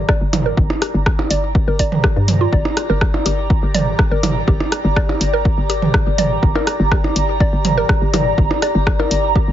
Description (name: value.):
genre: minimal techno.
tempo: 123 BPM.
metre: 4/4.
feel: straight.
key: G minor.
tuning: A4 = 440 Hz.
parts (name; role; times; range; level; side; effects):
hollow knocking FM bass; bass; 0.0-9.5 s; G1 to G2; -20 LUFS; equal; sidechain pumping.
airy breathy pad; texture; 0.0-9.5 s; G4 to Bb5; -22 LUFS; equal; chorus, phaser, sidechain pumping.
mallet-like synth pluck; riff; 0.1-9.4 s; F4 to D5; -24 LUFS; right 1 dB; chorus, sidechain pumping, ping-pong delay.
electronic kick drum; drums; 0.1-9.5 s; none; -17 LUFS; equal; none.
punchy analog drum machine; drums; 0.1-9.2 s; hi-hat, rim click; -21 LUFS; equal; none.
electronic toms and percussion blips; percussion; 0.3-9.1 s; none; -21 LUFS; right 3 dB; overdrive.
room: light reverb.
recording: heavily compressed radio sound, nothing above 7.5 kHz.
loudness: -14 LUFS.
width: side -11 dB against mid.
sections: 0.0-9.5 A section.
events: fade-in on analog synth pad 0.0-9.5; filter sweep on synth arpeggio sound 0.0-9.5.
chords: 0.0 Gm.